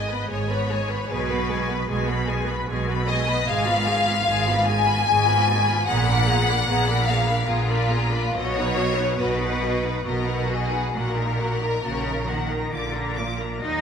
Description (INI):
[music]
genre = classical, slow romantic movement for string orchestra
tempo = 66-77 BPM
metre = 3/4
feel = rubato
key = unclear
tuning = A4 = 440 Hz
[part]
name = warm studio violin section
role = melody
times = 0.0-13.8 s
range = D#5 to D6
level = -31 LUFS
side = left 4 dB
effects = none
[part]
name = rich studio violin section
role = second line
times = 0.0-13.8 s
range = F4 to Ab5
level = -24 LUFS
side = left 3 dB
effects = none
[part]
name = rich chamber viola section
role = accompaniment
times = 0.0-13.8 s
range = Gb3 to B4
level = -29 LUFS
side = equal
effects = none
[part]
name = clear chamber cello section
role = bass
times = 0.0-13.8 s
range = G#2 to Eb4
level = -27 LUFS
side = right 2 dB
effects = none
[part]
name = clear chamber double bass section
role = bass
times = 0.0-13.8 s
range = G#1 to Eb2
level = -28 LUFS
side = right 2 dB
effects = none
[sound]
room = wet concert hall reverb, RT60 2.0 s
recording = minimal, uncompressed stereo recording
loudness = -20 LUFS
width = side -7 dB against mid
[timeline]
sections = 0.0-13.6 A section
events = none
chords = 0.0 G#m; 1.1 G#m/B; 3.5 Fdim/Ab; 5.9 Bb7b9; 8.4 B; 10.9 Ebm/Bb; 12.7 Bb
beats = 0.30 | 1.10 1.88 2.69 | 3.48 4.28 5.08 | 5.88 6.67 7.48 | 8.36 9.20 10.05 | 10.94 11.84 12.73 | 13.61